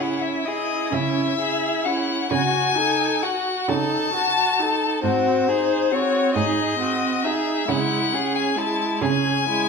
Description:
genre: classical, slow romantic movement for string quartet.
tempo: 44 BPM (dotted quarters).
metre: 6/8.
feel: rubato.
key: C# minor.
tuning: A4 = 440 Hz.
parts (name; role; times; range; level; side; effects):
rich violin; melody; 0.0-9.7 s; B#4 to A5; -22 LUFS; left 7 dB; none.
rich violin; second line; 0.0-9.7 s; E4 to A4; -26 LUFS; equal; none.
rich viola; accompaniment; 0.0-9.7 s; G#3 to F#4; -26 LUFS; right 5 dB; none.
rich cello; bass; 0.0-9.7 s; G#2 to C#3; -28 LUFS; right 6 dB; none.
room: wet recital hall reverb, RT60 1.8 s.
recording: minimal, uncompressed stereo recording.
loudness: -19 LUFS.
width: side -5 dB against mid.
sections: 0.0-9.7 A section.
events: none.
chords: 0.0 C#m; 2.3 D#dim/C#; 5.0 G#7; 7.7 C#m.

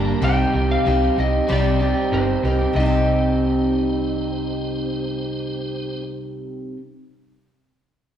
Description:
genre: rock.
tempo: 95 BPM.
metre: 4/4.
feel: straight.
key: C minor.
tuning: A4 = 438 Hz.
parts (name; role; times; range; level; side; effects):
picked steel-string acoustic guitar; accompaniment; 0.0-6.8 s; C3 to G4; -27 LUFS; left 4 dB; none.
tonewheel organ; sustained chords; 0.0-6.0 s; Bb3 to C5; -35 LUFS; equal; slow rotary speaker, chorus vibrato.
electric guitar through a small old amp; riff; 0.0-6.8 s; G2 to Bb4; -23 LUFS; right 3 dB; none.
hollow-body short-scale fingered electric bass; bass; 0.0-6.7 s; G1 to C2; -23 LUFS; equal; none.
electric slide guitar; melody; 0.2-6.0 s; C5 to G5; -25 LUFS; equal; none.
room: wet large studio reverb, RT60 1.3 s.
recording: band playing live in one room.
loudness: -18 LUFS.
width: side -9 dB against mid.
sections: 0.0-2.8 A section; 2.8-5.3 B section.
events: none.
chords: 0.2 Cm.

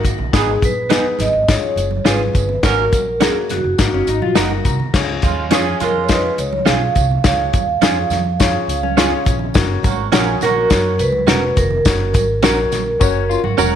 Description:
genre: uptempo 1960s-style soul.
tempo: 104 BPM.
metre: 4/4.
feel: straight.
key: unclear.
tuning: A4 = 441 Hz.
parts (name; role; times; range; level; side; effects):
warm upright piano; accompaniment; 0.0-13.8 s; G#3 to A#5; -24 LUFS; left 9 dB; none.
electric guitar through a small old amp; riff; 0.0-0.3, 3.9-4.9, 8.8-9.5, 13.0-13.8 s; C#4 to F#4; -24 LUFS; left 11 dB; none.
upright bass; bass; 0.0-13.8 s; E1 to F#2; -22 LUFS; right 1 dB; none.
warm soul drum kit; drums; 0.0-13.1 s; crash cymbal, hi-hat, kick drum, snare drum; -17 LUFS; left 2 dB; none.
congas; percussion; 0.0-13.7 s; none; -30 LUFS; right 10 dB; none.
tambourine; percussion; 0.1-13.7 s; none; -31 LUFS; right 15 dB; none.
warm horn section; second line; 0.3-6.3, 9.9-11.0 s; G#3 to A#4; -21 LUFS; right 12 dB; none.
vibraphone with soft mallets; melody; 0.4-13.5 s; F#4 to E#5; -19 LUFS; right 1 dB; none.
direct-recorded clean electric guitar; stabs; 0.9-13.7 s; B3 to A#4; -20 LUFS; right 12 dB; none.
room: light reverb, small room ambience.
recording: 1960s-style stereo with parts hard left and right.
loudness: -14 LUFS.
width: side -9 dB against mid.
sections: 0.0-4.9 A section; 4.9-13.8 B section.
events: upright piano fill 4.1-4.9; drum fill 13.0-13.8.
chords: 0.3 G#m; 1.5 C#; 2.6 F#/G#; 3.8 D#m; 4.9 C#; 9.5 F#.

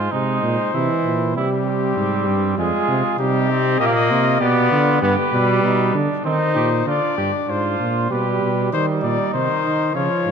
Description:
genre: classical, imitative canzona for brass ensemble.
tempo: 98 BPM.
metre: 3/4.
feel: straight.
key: unclear.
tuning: A4 = 439 Hz.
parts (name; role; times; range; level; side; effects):
mellow trumpet; melody; 0.0-10.3 s; F4 to F5; -23 LUFS; left 9 dB; none.
mellow trumpet; second line; 0.0-10.3 s; C4 to Ab4; -24 LUFS; right 5 dB; none.
brilliant trombone; accompaniment; 0.0-10.3 s; Eb3 to Eb4; -22 LUFS; right 2 dB; none.
mellow bass trombone; bass; 0.0-10.3 s; F2 to Eb3; -22 LUFS; right 2 dB; none.
room: moderate concert hall reverb, RT60 2.1 s.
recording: none.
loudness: -16 LUFS.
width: side -6 dB against mid.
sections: 0.0-6.9 A section; 6.9-10.3 B section.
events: none.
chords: 0.0 Fm/Ab (rootless); 0.7 C; 2.6 Fm; 3.2 Cm; 4.4 G/B; 5.0 G; 6.2 Cm/Eb; 6.9 Ddim; 8.1 G/B; 8.7 Cm.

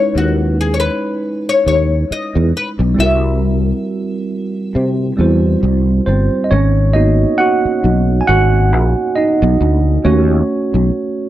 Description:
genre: R&B, neo-soul.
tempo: 68 BPM.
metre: 4/4.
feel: swing 57% on 16ths.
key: G# minor.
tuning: A4 = 440 Hz.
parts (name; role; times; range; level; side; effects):
oud; melody; 0.0-5.6 s; F#4 to E5; -17 LUFS; left 4 dB; none.
mellow tine electric piano; accompaniment; 0.0-11.3 s; G3 to G#5; -16 LUFS; right 2 dB; lush chorus.
sustaining fretless electric bass; bass; 0.2-10.9 s; G1 to C3; -13 LUFS; equal; ensemble chorus.
room: little or no reverb.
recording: dry, close 1970s-style studio recording.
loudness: -12 LUFS.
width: side -13 dB against mid.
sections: 0.0-6.5 A section; 6.5-11.3 B section.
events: tine electric piano solo 6.5-11.3.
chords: 0.0 C#m9; 3.0 C7#11; 6.5 G#m7; 10.0 D#m7b5.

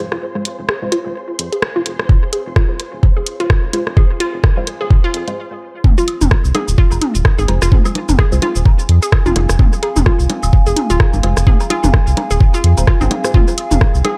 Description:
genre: minimal techno.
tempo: 128 BPM.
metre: 4/4.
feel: swing 58% on 16ths.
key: F minor.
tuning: A4 = 436 Hz.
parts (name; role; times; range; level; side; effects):
filtered dub chord stab; stabs; 0.0-0.9, 3.7-8.4, 11.2-13.3 s; Ab3 to C5; -27 LUFS; equal; phaser, cassette tape, tape echo.
round analog bass; bass; 0.0-14.0 s; Eb1 to F2; -17 LUFS; equal; sidechain pumping, high-pass filter.
flickering grainy texture; texture; 0.1-5.4 s; C5; -35 LUFS; equal; built-in reverb, sidechain pumping.
warbly tape-like pad; texture; 0.0-14.2 s; C4 to C6; -31 LUFS; equal; chorus, built-in reverb, sidechain pumping.
hollow square pluck; riff; 0.1-14.1 s; C4 to Ab4; -24 LUFS; equal; chorus, sidechain pumping, dub echo.
punchy analog drum machine; drums; 0.1-14.2 s; cabasa, hi-hat, rim click; -24 LUFS; equal; tape echo.
electronic kick drum; drums; 2.1-13.9 s; none; -14 LUFS; equal; none.
electronic toms, woodblock and bongos; percussion; 5.8-14.2 s; none; -23 LUFS; equal; dub echo.
room: little or no reverb.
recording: echo-heavy mix.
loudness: -14 LUFS.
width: mono.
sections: 0.0-5.8 A section; 5.8-14.2 B section.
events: build-up 0.0-5.8; filter sweep on synth arpeggio sound 0.0-5.8; stop 5.4-5.8; drop 5.8-14.2.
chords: 0.0 Fm.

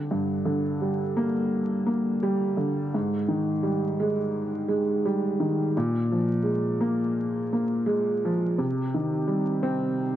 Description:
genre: hip hop.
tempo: 85 BPM.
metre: 4/4.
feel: swing 55% on 16ths.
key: unclear.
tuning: A4 = 439 Hz.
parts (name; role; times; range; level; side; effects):
dark upright piano; solo; 0.0-10.2 s; G2 to C4; -24 LUFS; equal; cassette tape, high-pass filter, low-pass filter.
room: light reverb, small room ambience.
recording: vinyl crackle, nothing above 7.8 kHz.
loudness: -24 LUFS.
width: side -12 dB against mid.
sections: 0.0-10.2 A section.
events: none.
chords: 0.0 Gm; 2.9 Ab5; 5.8 Bb5; 8.6 Cm.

